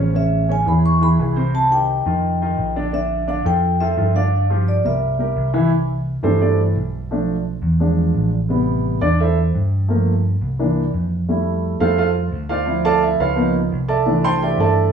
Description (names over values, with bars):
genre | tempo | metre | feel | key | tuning
jazz | 172 BPM | 4/4 | straight | C major from 5.7 s | A4 = 441 Hz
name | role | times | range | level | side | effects
warm upright piano | accompaniment | 0.0-14.9 s | C3 to C6 | -20 LUFS | right 2 dB | none
picked electric bass | bass | 0.0-14.9 s | A1 to G2 | -19 LUFS | equal | none
vibraphone with medium mallets | melody | 0.2-5.5 s | D5 to C#6 | -21 LUFS | left 1 dB | none
room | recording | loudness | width
wet large studio reverb, RT60 1.1 s | band playing live in one room, faint mains hum | -16 LUFS | side -7 dB against mid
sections
0.0-5.7 A section; 5.7-14.9 B section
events
upright piano solo 5.7-14.9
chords
0.1 Amaj7; 1.5 Cm; 2.2 Ebmaj9; 2.9 Bbmaj7; 4.3 Gm7; 5.0 C7; 5.7 C69; 7.1 Bm7b5; 7.8 E7b9; 8.5 Am7; 9.9 Gm9; 10.6 C9; 11.3 Fmaj9; 12.7 Dm7; 13.4 Db13; 14.1 C69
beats
| 0.15 0.50 0.84 1.19 | 1.54 1.89 2.24 2.58 | 2.93 3.28 3.63 3.97 | 4.32 4.67 5.02 5.37 | 5.71 6.06 6.41 6.76 | 7.10 7.45 7.80 8.15 | 8.50 8.84 9.19 9.54 | 9.89 10.24 10.58 10.93 | 11.28 11.63 11.98 12.32 | 12.67 13.02 13.37 13.72 | 14.07 14.41 14.76